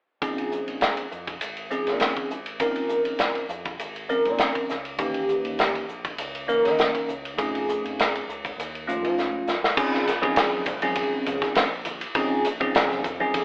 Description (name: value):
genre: electric jazz fusion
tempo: 100 BPM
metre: 4/4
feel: swing 54% on 16ths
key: Bb minor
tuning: A4 = 441 Hz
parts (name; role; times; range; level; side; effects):
- bell-like tine electric piano; accompaniment; 0.2-13.4 s; Fb3 to Bb4; -27 LUFS; equal; phaser
- fingered electric bass; bass; 0.2-13.4 s; Ab1 to F3; -39 LUFS; equal; none
- modern studio drum kit; drums; 0.2-13.4 s; crash cymbal, hi-hat, kick drum, ride cymbal, snare drum; -29 LUFS; equal; none
- congas; percussion; 10.2-13.3 s; none; -41 LUFS; equal; none
room: moderate studio reverb, RT60 0.7 s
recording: band playing live in one room, telephone sound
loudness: -25 LUFS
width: mono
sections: 0.2-9.8 A section; 9.8-13.4 B section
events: drum fill 9.2-9.8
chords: 0.2 Bbm11; 5.0 Eb7b9; 7.4 F7alt; 9.8 Bbm11